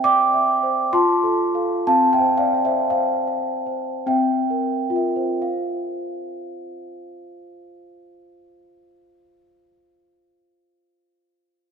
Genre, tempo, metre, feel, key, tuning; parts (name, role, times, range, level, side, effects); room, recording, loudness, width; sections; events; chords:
classical, lullaby for celesta; 43-69 BPM; 3/4; straight; F major; A4 = 439 Hz
large celesta; solo; 0.0-11.7 s; C4 to D6; -19 LUFS; equal
wet church reverb, RT60 3.1 s; recorded in a church or concert hall; -18 LUFS; side -6 dB against mid
0.0-5.4 A section; 5.4-9.6 B section
slowing down 0.0-5.4
0.0 C; 0.9 F; 1.9 F5/C; 4.1 C7; 5.4 F5